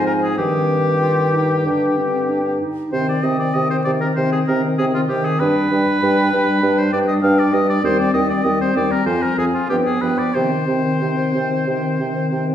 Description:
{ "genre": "quick classical-period movement for wind quintet", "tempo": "96 BPM", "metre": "4/4", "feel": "uneven beats, rubato", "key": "C minor", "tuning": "A4 = 440 Hz", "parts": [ { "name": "hollow concert flute", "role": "melody", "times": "0.0-12.5 s", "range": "G5 to Ab5", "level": "-26 LUFS", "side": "left 4 dB", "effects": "none" }, { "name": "clear oboe", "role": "second line", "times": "0.0-12.5 s", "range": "F4 to F5", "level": "-22 LUFS", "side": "equal", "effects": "none" }, { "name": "clear clarinet", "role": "accompaniment", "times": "0.0-12.5 s", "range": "B3 to F4", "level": "-22 LUFS", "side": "equal", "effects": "none" }, { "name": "mellow French horn", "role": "accompaniment", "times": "0.0-12.5 s", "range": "D3 to G3", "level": "-23 LUFS", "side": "right 1 dB", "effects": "none" }, { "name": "dark bassoon", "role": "bass", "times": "0.0-12.5 s", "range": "Eb2 to C3", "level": "-21 LUFS", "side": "right 1 dB", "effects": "none" } ], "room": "wet recital hall reverb, RT60 1.4 s", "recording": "heard from further back in the room", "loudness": "-16 LUFS", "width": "side -10 dB against mid", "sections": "0.0-12.5 A section", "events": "none", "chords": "0.4 Cm/G; 1.7 G5; 2.9 Cm; 5.4 G; 7.8 Cm/Eb; 9.1 Fm; 9.7 G7; 10.3 Cm" }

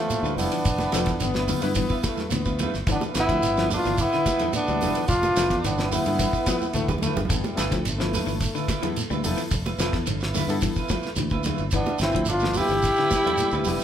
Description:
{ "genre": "afrobeat", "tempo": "108 BPM", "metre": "4/4", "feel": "straight", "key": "G mixolydian", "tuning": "A4 = 443 Hz", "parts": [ { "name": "clear trombone", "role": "melody", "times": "0.0-7.0, 11.7-13.8 s", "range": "A3 to G4", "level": "-25 LUFS", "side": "left 1 dB", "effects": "none" }, { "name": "growling tenor saxophone", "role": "second line", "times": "0.0-7.0, 11.7-13.8 s", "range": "F3 to E4", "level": "-29 LUFS", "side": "right 4 dB", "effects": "none" }, { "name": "bright reed electric piano", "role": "accompaniment", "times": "0.0-13.8 s", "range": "B3 to B4", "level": "-35 LUFS", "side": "left 4 dB", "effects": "fast tremolo" }, { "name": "electric guitar at the edge of break-up", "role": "arpeggios", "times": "0.0-13.8 s", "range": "D3 to G3", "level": "-32 LUFS", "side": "left 5 dB", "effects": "none" }, { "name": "damped 70s drum kit", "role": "drums", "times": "0.1-13.8 s", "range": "hi-hat, kick drum, ride cymbal, snare drum", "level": "-30 LUFS", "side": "equal", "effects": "none" }, { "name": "congas", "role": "percussion", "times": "0.1-13.8 s", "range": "none", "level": "-33 LUFS", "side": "right 3 dB", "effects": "none" }, { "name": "shekere", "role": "percussion", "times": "0.1-13.8 s", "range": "none", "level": "-33 LUFS", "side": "right 4 dB", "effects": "none" }, { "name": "clean electric guitar", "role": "stabs", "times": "0.2-13.8 s", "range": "A3 to B4", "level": "-33 LUFS", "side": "right 5 dB", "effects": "tremolo" }, { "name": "fingered electric bass", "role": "bass", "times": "0.2-13.8 s", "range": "F1 to G2", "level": "-29 LUFS", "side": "equal", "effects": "none" }, { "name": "bright bass trombone", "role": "second line", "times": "0.9-2.7, 6.5-9.0, 13.1-13.8 s", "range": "G3 to B3", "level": "-32 LUFS", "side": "left 3 dB", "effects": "none" } ], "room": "moderate large studio reverb, RT60 1.2 s", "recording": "band playing live in one room", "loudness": "-21 LUFS", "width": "side -9 dB against mid", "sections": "0.0-13.8 A section", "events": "drum fill 6.6-7.3", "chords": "0.0 G13" }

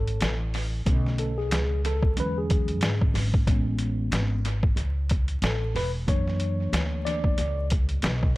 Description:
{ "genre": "hip hop, jazz-hop", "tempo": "92 BPM", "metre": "4/4", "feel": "swing 57% on 16ths", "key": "F# minor", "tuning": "A4 = 441 Hz", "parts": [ { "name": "mellow tine electric piano", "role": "accompaniment", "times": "0.0-7.7 s", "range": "D3 to D5", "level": "-30 LUFS", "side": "left 1 dB", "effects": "medium stereo tremolo" }, { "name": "upright bass", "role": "bass", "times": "0.0-8.3 s", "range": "E1 to G#2", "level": "-27 LUFS", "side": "equal", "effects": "none" }, { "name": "trip hop sampler-style drum kit", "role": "drums", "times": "0.1-8.4 s", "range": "hi-hat, kick drum, snare drum", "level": "-26 LUFS", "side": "equal", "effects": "overdrive, vintage 12-bit sampler grit, tape echo" } ], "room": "small room ambience", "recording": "echo-heavy mix, vinyl crackle", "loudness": "-23 LUFS", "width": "side -19 dB against mid", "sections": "0.0-8.4 A section", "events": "tine electric piano solo 0.0-8.4", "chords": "0.0 F#madd9 (rootless); 0.9 Bm9; 2.2 E13; 3.5 Amaj9; 6.1 F#7b13" }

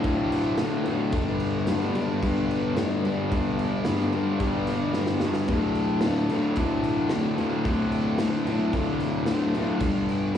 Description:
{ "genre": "garage rock duo or trio", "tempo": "111 BPM", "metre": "4/4", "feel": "straight", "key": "unclear", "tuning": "A4 = 440 Hz", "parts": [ { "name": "fuzz guitar", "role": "riff", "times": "0.0-10.4 s", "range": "D2 to G3", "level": "-24 LUFS", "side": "left 1 dB", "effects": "distortion, slapback echo" }, { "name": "raw garage drum kit", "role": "drums", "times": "0.0-10.4 s", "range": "crash cymbal, kick drum, snare drum", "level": "-30 LUFS", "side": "equal", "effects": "none" } ], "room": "light reverb", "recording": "live gig heard through the venue's PA, club reverb, small room ambience", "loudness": "-23 LUFS", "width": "side -9 dB against mid", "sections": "0.0-10.4 A section", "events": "drum fill 4.9-5.5", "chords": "0.0 D5; 1.1 G5; 5.5 D5; 9.8 G5" }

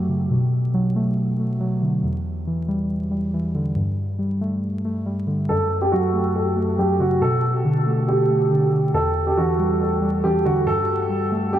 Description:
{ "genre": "hip hop", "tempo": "139 BPM", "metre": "4/4", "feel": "half-time", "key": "unclear", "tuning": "A4 = 440 Hz", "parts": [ { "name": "muted felt-like synth keys", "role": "accompaniment", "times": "0.0-11.6 s", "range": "E2 to A3", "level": "-21 LUFS", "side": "equal", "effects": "chorus, low-pass filter" }, { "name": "dark concert grand piano", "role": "melody", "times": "5.5-11.6 s", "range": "F#4 to A4", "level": "-21 LUFS", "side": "right 1 dB", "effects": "lush chorus, low-pass filter, ping-pong delay" } ], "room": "wet huge ambient reverb, RT60 8.2 s", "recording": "dreamy mix soaked in reverb, vinyl crackle", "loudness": "-19 LUFS", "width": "side -11 dB against mid", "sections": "0.0-11.6 A section", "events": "break 0.0-5.5; filter sweep 0.0-10.7", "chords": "0.3 Bm7; 2.0 Em7; 3.8 Gsus2; 5.5 F#m; 7.2 Bm7; 8.9 Em7; 10.7 Gsus2" }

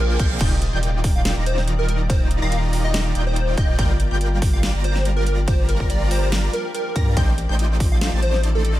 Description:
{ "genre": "future bass", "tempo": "142 BPM", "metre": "4/4", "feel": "swing 54% on 16ths, half-time", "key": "Eb major", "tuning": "A4 = 442 Hz", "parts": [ { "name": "plucky unison lead", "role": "melody", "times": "0.0-8.7 s", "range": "A4 to F5", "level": "-28 LUFS", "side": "equal", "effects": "ensemble chorus, sidechain pumping, tape echo" }, { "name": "shimmering ambient pad", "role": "sustained chords", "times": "0.0-8.8 s", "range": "C3 to D5", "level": "-33 LUFS", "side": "equal", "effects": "chorus, built-in reverb, sidechain pumping" }, { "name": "concert harp", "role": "arpeggios", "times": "0.0-8.8 s", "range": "C4 to Bb4", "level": "-34 LUFS", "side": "left 6 dB", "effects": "sidechain pumping, dub echo" }, { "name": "wide unison pluck", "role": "arpeggios", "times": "0.0-8.8 s", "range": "G6 to Bb6", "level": "-35 LUFS", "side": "left 1 dB", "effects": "phaser, vintage 12-bit sampler grit, sidechain pumping, dub echo" }, { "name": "supersaw chords", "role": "riff", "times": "0.0-8.8 s", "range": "Eb3 to Bb5", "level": "-28 LUFS", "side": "right 1 dB", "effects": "sidechain pumping" }, { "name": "saturated sub bass", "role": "bass", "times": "0.0-8.8 s", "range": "Eb1 to G2", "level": "-21 LUFS", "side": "equal", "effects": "sidechain pumping" }, { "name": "dubstep drum kit", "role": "drums", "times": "0.2-8.7 s", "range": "crash cymbal, hi-hat, ride cymbal, snare drum", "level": "-28 LUFS", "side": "equal", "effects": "none" }, { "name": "electronic kick drum", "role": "drums", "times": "0.2-7.9 s", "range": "none", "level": "-20 LUFS", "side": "equal", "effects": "none" } ], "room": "little or no reverb", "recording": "none", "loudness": "-18 LUFS", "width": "side -15 dB against mid", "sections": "0.0-8.8 A section", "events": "none", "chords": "0.4 Ebmaj7; 3.8 Gm7; 7.2 F13/A" }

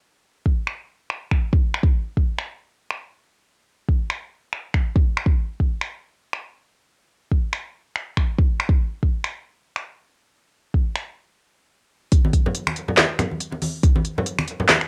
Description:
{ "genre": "dubstep", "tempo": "140 BPM", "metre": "4/4", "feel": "swing 58% on 16ths, half-time", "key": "none", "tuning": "none", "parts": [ { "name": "electronic kick drum", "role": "drums", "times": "0.5-13.9 s", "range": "none", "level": "-20 LUFS", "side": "equal", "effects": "studio reverb, cassette tape" }, { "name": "deep house drum kit", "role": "drums", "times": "0.7-14.9 s", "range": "finger snaps, handclaps, hi-hat, snare drum", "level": "-24 LUFS", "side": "equal", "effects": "low-pass filter on snare, studio reverb, cassette tape, low-pass filter on hats, low-pass filter on cymbals" }, { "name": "congas", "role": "percussion", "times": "12.2-14.8 s", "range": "none", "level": "-28 LUFS", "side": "equal", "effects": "dub echo" } ], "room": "light reverb", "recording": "home recording on cassette", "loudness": "-23 LUFS", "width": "mono", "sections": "0.0-12.1 A section; 12.1-14.9 B section", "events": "stop 11.3-12.1; drop 12.1-14.9", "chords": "none" }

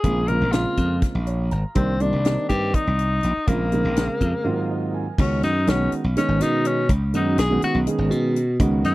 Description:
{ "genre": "electric jazz fusion", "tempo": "245 BPM (eighths)", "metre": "7/8", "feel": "straight", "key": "Bb dorian", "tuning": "A4 = 440 Hz", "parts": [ { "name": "breathy tenor saxophone", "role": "melody", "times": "0.0-8.9 s", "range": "Bb3 to Bb4", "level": "-25 LUFS", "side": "left 2 dB", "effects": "tape echo" }, { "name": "dark baby grand piano", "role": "accompaniment", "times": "0.0-8.9 s", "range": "Ab2 to Bb5", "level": "-25 LUFS", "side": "right 2 dB", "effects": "none" }, { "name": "glassy slap bass", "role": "bass", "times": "0.0-8.9 s", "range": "Ab1 to B2", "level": "-22 LUFS", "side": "equal", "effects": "none" }, { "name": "tight funk drum kit", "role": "drums", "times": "0.0-8.9 s", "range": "crash cymbal, hi-hat, kick drum, snare drum", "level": "-23 LUFS", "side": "equal", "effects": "none" } ], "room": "little or no reverb", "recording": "dry, close 1970s-style studio recording", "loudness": "-19 LUFS", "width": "side -18 dB against mid", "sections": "0.0-5.2 A section; 5.2-8.9 B section", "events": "grand piano fill 1.0-1.8, 4.5-5.2; break 4.5-5.2; tenor saxophone solo 5.2-8.9", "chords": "0.0 Bbm9; 1.8 Cm9; 3.5 Bbm9; 4.5 Ab13; 5.2 C#9sus4" }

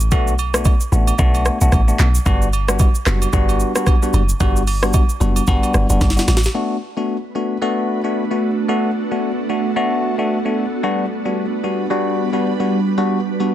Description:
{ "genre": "afrobeats", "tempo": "112 BPM", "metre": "4/4", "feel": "swing 58% on 16ths", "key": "B minor", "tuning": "A4 = 438 Hz", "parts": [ { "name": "deep log drum bass", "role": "bass", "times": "0.0-6.5 s", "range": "F#1 to B1", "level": "-17 LUFS", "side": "equal", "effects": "none" }, { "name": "afro-pop drum kit", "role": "drums", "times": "0.0-6.6 s", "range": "handclaps, hi-hat, kick drum, rim click, shaker, snare drum", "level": "-17 LUFS", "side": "equal", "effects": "overdrive" }, { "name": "bell-like tine electric piano", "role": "accompaniment", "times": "0.1-13.5 s", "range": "G3 to F#4", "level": "-20 LUFS", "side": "left 2 dB", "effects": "phaser" }, { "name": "agogo bells and woodblock", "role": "percussion", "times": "0.1-6.4 s", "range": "none", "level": "-29 LUFS", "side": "right 10 dB", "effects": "none" }, { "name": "ethereal airy pad", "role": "sustained chords", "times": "7.2-13.5 s", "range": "G3 to B4", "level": "-21 LUFS", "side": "right 2 dB", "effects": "ensemble chorus, built-in reverb, sidechain pumping" } ], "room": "little or no reverb", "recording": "dense, heavily limited modern master", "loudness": "-15 LUFS", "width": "side -12 dB against mid", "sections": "0.0-6.5 A section; 6.5-13.5 B section", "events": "drum fill 6.0-6.5", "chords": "0.0 Bm7; 2.3 Gmaj7; 6.5 Bm7; 10.8 Gmaj7" }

